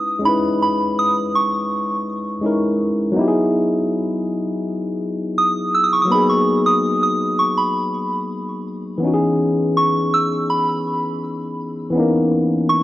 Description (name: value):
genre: R&B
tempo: 82 BPM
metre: 4/4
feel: straight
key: unclear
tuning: A4 = 440 Hz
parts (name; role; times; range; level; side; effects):
- soft synth bell; melody; 0.0-12.8 s; B5 to E6; -18 LUFS; right 1 dB; chorus, digital delay
- tine electric piano; accompaniment; 0.0-12.8 s; E3 to B4; -19 LUFS; left 1 dB; lush chorus
room: moderate lush hall reverb, RT60 2.9 s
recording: worn, warbling old tape, cassette tape, warbly pitch drift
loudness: -16 LUFS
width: side -15 dB against mid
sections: 0.0-12.8 A section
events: none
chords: 0.0 C#m7; 3.2 Emaj7; 6.1 G#m7; 9.0 C#m7